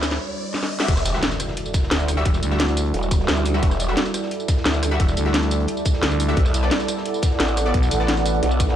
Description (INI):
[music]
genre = dark technical drum and bass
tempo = 175 BPM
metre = 4/4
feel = straight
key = E minor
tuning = A4 = 440 Hz
[part]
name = deep dark ambient pad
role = sustained chords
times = 0.0-8.8 s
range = G3 to D5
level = -30 LUFS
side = right 2 dB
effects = chorus, built-in reverb, sidechain pumping
[part]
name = growl bass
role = bass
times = 0.0-8.8 s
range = E1 to D2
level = -22 LUFS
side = equal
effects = chorus, overdrive
[part]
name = drum and bass drum kit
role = drums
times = 0.0-8.7 s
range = crash cymbal, hi-hat, rim click, snare drum, tambourine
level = -24 LUFS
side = left 1 dB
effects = none
[part]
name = riser, impact and zap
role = sound effects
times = 0.0-3.5 s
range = none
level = -30 LUFS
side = equal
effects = none
[part]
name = airy breathy pad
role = texture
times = 0.0-8.8 s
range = E4 to F#5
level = -28 LUFS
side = right 3 dB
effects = chorus, sidechain pumping
[part]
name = orchestra-hit-like synth stab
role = stabs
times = 0.8-8.1 s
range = G3 to E5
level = -30 LUFS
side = left 2 dB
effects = built-in reverb, ping-pong delay
[part]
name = crunchy breakbeat drum kit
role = drums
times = 0.9-8.8 s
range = hi-hat, snare drum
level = -36 LUFS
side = equal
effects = none
[part]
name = electronic kick drum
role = drums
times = 0.9-8.7 s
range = none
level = -19 LUFS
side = equal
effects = none
[part]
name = growling FM bass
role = bass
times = 2.3-2.9, 5.0-8.4 s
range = E1 to D2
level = -21 LUFS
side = equal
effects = none
[sound]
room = light reverb, digital ambience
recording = played on a big sound system in a bare room, large studio reverb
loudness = -18 LUFS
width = side -10 dB against mid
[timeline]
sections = 0.9-8.8 A section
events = drum fill 0.0, 0.5-0.9; riser 0.0-0.9; break 0.2-0.9; drop 0.9-8.8; impact 0.9-2.3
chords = 0.0 Emadd9; 6.4 Bm7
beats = 0.20 0.54 | 0.88 1.23 1.57 1.91 | 2.26 2.60 2.94 3.28 | 3.63 3.97 4.31 4.66 | 5.00 5.34 5.68 6.03 | 6.37 6.71 7.06 7.40 | 7.74 8.08 8.43